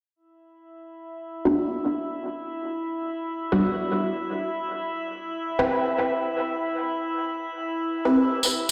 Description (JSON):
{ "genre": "dub techno", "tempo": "free time", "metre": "none", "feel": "none", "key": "E minor", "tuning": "A4 = 440 Hz", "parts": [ { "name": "drifting glass-harmonics texture", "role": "texture", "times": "0.7-8.7 s", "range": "E4 to E5", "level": "-32 LUFS", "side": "equal", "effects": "chorus, built-in reverb" }, { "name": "filtered dub chord stab", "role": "stabs", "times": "1.5-8.1 s", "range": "G3 to B4", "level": "-27 LUFS", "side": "equal", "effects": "phaser, dub echo" }, { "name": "tambourine", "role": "percussion", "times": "8.4-8.7 s", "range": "none", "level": "-23 LUFS", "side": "equal", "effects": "none" } ], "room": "wet lush hall reverb, RT60 2.4 s", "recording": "played on a big sound system in a bare room, stone room reverb", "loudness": "-26 LUFS", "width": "mono", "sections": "0.2-8.7 A section", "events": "filter sweep on synth stab 0.2-8.7", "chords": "none" }